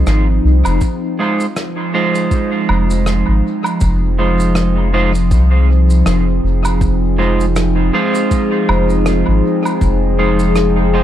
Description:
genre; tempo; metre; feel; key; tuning
ambient dub; 80 BPM; 4/4; swing 57% on 16ths; F minor; A4 = 438 Hz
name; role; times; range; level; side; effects
warbly tape-like pad; sustained chords; 0.0-11.0 s; F3 to Ab4; -17 LUFS; equal; chorus, built-in reverb, phaser
soft dub sub bass; bass; 0.0-11.0 s; F1 to C2; -14 LUFS; equal; none
shaker, rim click and woodblock; drums; 0.1-10.7 s; none; -24 LUFS; right 1 dB; dub echo
electronic kick drum; drums; 0.8-10.0 s; none; -16 LUFS; equal; none
clean electric guitar; stabs; 1.2-11.0 s; Ab3 to C5; -19 LUFS; right 3 dB; wide subtle chorus, dub echo
room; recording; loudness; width
light reverb, small room ambience; echo-heavy mix; -12 LUFS; side -11 dB against mid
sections
0.8-11.0 A section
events
none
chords
0.0 Fm7

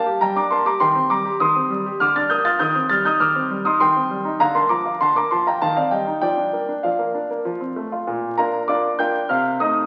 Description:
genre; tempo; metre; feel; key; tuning
classical-period piano sonatina; 100 BPM; 3/4; straight; Bb major; A4 = 440 Hz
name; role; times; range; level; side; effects
clear concert grand piano; solo; 0.0-9.9 s; Bb2 to A6; -20 LUFS; equal; none
room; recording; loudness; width
wet recital hall reverb, RT60 1.7 s; very old 78 rpm record, vinyl crackle; -20 LUFS; mono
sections
0.0-8.1 A section; 8.1-9.9 B section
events
none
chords
0.0 Gm; 0.8 Cm/Eb; 2.0 Bb/D; 2.6 Cm/Eb; 4.4 Bb/D; 5.6 Cm/Eb; 6.2 Bb/F; 7.5 F; 8.1 Bb; 9.3 Adim/C

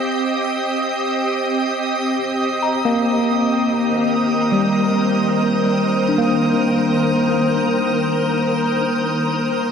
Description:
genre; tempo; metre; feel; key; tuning
ambient; 54 BPM; 3/4; straight; unclear; A4 = 442 Hz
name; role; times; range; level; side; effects
soft additive organ-like pad; sustained chords; 0.0-9.7 s; Eb3 to Eb5; -20 LUFS; right 1 dB; ensemble chorus, built-in reverb
barky tine electric piano; arpeggios; 0.0-9.7 s; G3 to Bb5; -19 LUFS; left 2 dB; medium stereo tremolo, diffuse ambient delay
drifting glass-harmonics texture; texture; 0.0-9.7 s; Eb6; -26 LUFS; right 2 dB; chorus, built-in reverb
room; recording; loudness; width
wet huge ambient reverb, RT60 9.1 s; none; -16 LUFS; side -7 dB against mid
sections
0.0-9.7 A section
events
none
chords
0.0 Cm7; 3.4 Cm9/Eb

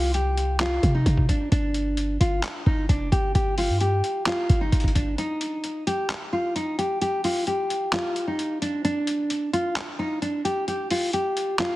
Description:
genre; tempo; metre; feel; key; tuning
hip hop, trap; 131 BPM; 4/4; half-time; unclear; A4 = 440 Hz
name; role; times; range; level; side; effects
nylon-string guitar; melody; 0.0-11.8 s; D4 to G4; -25 LUFS; equal; low-pass filter, digital delay
warm 808-style bass; bass; 0.0-5.2 s; F1 to C3; -24 LUFS; equal; none
boom bap sampler-style drum kit; drums; 0.1-11.7 s; handclaps, hi-hat, kick drum; -26 LUFS; equal; vintage 12-bit sampler grit
room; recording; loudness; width
light reverb, digital ambience; heavily compressed radio sound; -22 LUFS; side -17 dB against mid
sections
0.0-11.8 A section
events
break 5.2-11.8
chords
0.0 Cm; 1.5 G5; 5.2 N.C.

